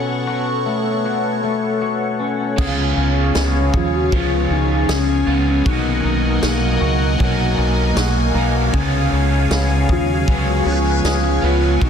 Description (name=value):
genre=dream pop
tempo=78 BPM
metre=4/4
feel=straight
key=unclear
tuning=A4 = 440 Hz
part: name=phased analog pad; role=sustained chords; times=0.0-11.9 s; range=B3 to C#6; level=-23 LUFS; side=equal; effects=phaser, chorus
part: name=electric guitar at the edge of break-up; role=arpeggios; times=0.0-11.9 s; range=B2 to G#4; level=-22 LUFS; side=left 4 dB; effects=lush chorus, ping-pong delay
part: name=crunchy overdriven guitar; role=accompaniment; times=2.6-11.9 s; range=B2 to E#4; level=-23 LUFS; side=right 4 dB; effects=harmonic tremolo, lush chorus
part: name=deep dub fingered electric bass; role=bass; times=2.6-11.9 s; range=B1 to D#2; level=-19 LUFS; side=equal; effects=none
part: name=vintage drum kit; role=drums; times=2.6-11.9 s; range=crash cymbal, kick drum, ride cymbal, snare drum, tambourine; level=-24 LUFS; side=equal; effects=none
part: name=soft octave-layered synth lead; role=melody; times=3.8-11.9 s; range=C#4 to F#4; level=-22 LUFS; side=left 1 dB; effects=chorus, phaser, ping-pong delay
part: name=backwards swelling texture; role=texture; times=10.6-11.9 s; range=B4 to C#5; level=-30 LUFS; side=left 1 dB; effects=built-in reverb, ping-pong delay
room=moderate studio reverb, RT60 0.5 s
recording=dense, heavily limited modern master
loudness=-15 LUFS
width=side -7 dB against mid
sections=0.0-2.6 A section; 2.6-11.9 B section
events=break 0.0-2.6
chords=0.0 F#m/B; 2.6 C#7; 5.7 Bmaj7; 8.7 C#7